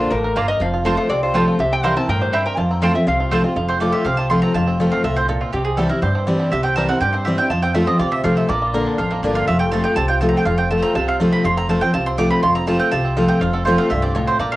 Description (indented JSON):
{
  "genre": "bluegrass",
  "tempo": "244 BPM",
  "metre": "4/4",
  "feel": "straight",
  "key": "F major",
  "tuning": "A4 = 440 Hz",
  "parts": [
    { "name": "bluegrass banjo", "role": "melody", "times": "0.0-14.6 s", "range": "F3 to Bb4", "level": "-25 LUFS", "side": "right 2 dB", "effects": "cassette tape" },
    { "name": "lap resonator guitar", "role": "second line", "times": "0.0-1.5 s", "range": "A4 to D5", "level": "-22 LUFS", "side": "left 1 dB", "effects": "cassette tape, plate reverb" },
    { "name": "picked steel-string acoustic guitar", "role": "accompaniment", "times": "0.0-14.6 s", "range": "F2 to F4", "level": "-19 LUFS", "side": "left 1 dB", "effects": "cassette tape" },
    { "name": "upright bass", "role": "bass", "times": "0.0-14.6 s", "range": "F1 to G2", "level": "-24 LUFS", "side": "equal", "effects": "none" },
    { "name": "mandolin", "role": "stabs", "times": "0.4-14.6 s", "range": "Bb3 to D6", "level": "-22 LUFS", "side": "right 3 dB", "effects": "cassette tape" },
    { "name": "lap resonator guitar", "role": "melody", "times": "0.5-3.5 s", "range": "C5 to Bb5", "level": "-22 LUFS", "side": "left 1 dB", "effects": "cassette tape" }
  ],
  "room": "moderate studio reverb, RT60 0.6 s",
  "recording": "home recording on cassette, lossy compression artefacts",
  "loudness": "-16 LUFS",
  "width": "side -17 dB against mid",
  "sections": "0.0-3.6 A section; 3.6-14.6 B section",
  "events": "mandolin solo 3.6-14.6",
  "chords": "0.0 Bb; 0.6 F; 1.6 C; 2.6 F; 5.5 C; 7.5 F; 8.5 Bb; 9.5 F"
}